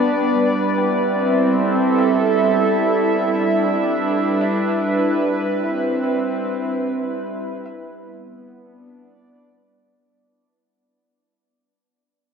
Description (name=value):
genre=ambient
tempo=74 BPM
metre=3/4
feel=straight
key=unclear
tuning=A4 = 440 Hz
part: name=warbly tape-like pad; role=sustained chords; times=0.0-10.1 s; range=G3 to E5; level=-17 LUFS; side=right 1 dB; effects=chorus, built-in reverb
part: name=soft round pluck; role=arpeggios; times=0.0-10.5 s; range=B4 to G5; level=-35 LUFS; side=equal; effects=none
room=wet huge ambient reverb, RT60 8.5 s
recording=in a vast, echoing space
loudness=-17 LUFS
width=side -6 dB against mid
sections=0.0-10.1 A section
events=fade-out 3.6-10.1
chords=0.4 Am7; 2.8 Em7; 5.2 Cmaj7; 7.7 G